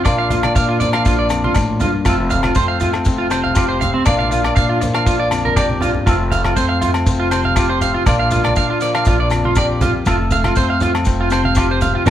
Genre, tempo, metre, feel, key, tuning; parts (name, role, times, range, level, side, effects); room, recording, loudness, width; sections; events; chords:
highlife guitar band; 120 BPM; 4/4; straight; F major; A4 = 440 Hz
clean electric guitar; accompaniment; 0.0-12.1 s; F2 to A4; -20 LUFS; left 3 dB
electric guitar at the edge of break-up; arpeggios; 0.0-12.1 s; C4 to F5; -19 LUFS; right 2 dB; spring reverb
upright bass; bass; 0.1-12.1 s; F1 to Bb2; -22 LUFS; equal
damped 70s drum kit; drums; 0.1-12.1 s; hi-hat, kick drum, rim click, snare drum; -19 LUFS; equal
agogo bells; percussion; 0.1-12.1 s; -25 LUFS; left 4 dB
congas; percussion; 0.1-12.1 s; -24 LUFS; right 2 dB
maracas; percussion; 0.1-12.1 s; -32 LUFS; left 3 dB
moderate stone room reverb, RT60 1.0 s; band playing live in one room; -14 LUFS; side -11 dB against mid
0.0-12.1 A section
drum fill 5.6-6.1
0.1 Bb; 2.1 F; 4.1 Bb; 6.1 F; 8.1 Bb; 10.1 F